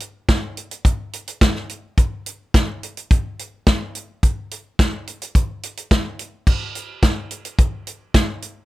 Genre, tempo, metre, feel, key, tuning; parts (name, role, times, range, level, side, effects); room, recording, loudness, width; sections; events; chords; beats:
rock; 107 BPM; 4/4; straight
natural country drum kit; drums; 0.0-8.6 s; crash cymbal, hi-hat, kick drum, snare drum; -17 LUFS; equal
little or no reverb; -18 LUFS; side -18 dB against mid
0.0-8.7 A section
0.28 0.85 1.41 | 1.97 2.54 3.10 3.66 | 4.22 4.78 5.34 5.90 | 6.46 7.02 7.58 8.14